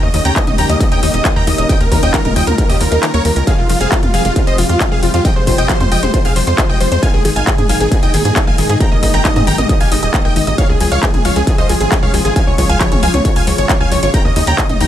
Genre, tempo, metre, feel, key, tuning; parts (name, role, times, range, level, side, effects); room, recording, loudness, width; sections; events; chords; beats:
uplifting trance; 135 BPM; 4/4; straight; A4 = 440 Hz
big supersaw lead; melody; 0.0-14.9 s; F4 to Bb5; -18 LUFS; equal; sidechain pumping, dub echo
analog pluck; second line; 0.0-14.9 s; F4 to Bb5; -24 LUFS; equal; chorus, sidechain pumping, dub echo
lush unison pad; sustained chords; 0.0-14.9 s; Bb2 to Ab4; -22 LUFS; equal; chorus, sidechain pumping
analog pluck; arpeggios; 0.0-14.9 s; Eb3 to Ab4; -22 LUFS; left 5 dB; chorus, sidechain pumping, dub echo
tight sequencer bass; bass; 0.0-14.9 s; Eb1 to Ab2; -17 LUFS; equal; sidechain pumping
techno drum kit; drums; 0.1-14.9 s; handclaps, hi-hat, toms; -20 LUFS; left 1 dB; sidechain pumping on hats, sidechain pumping on toms
electronic kick drum; drums; 0.4-14.7 s; -15 LUFS; equal; distortion
little or no reverb; lossy compression artefacts; -11 LUFS; side -11 dB against mid
0.0-14.9 A section
kick drops out 3.0-3.5
0.0 Eb7; 3.5 Fmadd9; 7.0 Absus2; 10.6 Db; 14.1 Eb7
0.36 0.81 1.25 | 1.69 2.14 2.58 3.03 | 3.47 3.92 4.36 4.80 | 5.25 5.69 6.14 6.58 | 7.03 7.47 7.92 8.36 | 8.80 9.25 9.69 10.14 | 10.58 11.03 11.47 11.92 | 12.36 12.80 13.25 13.69 | 14.14 14.58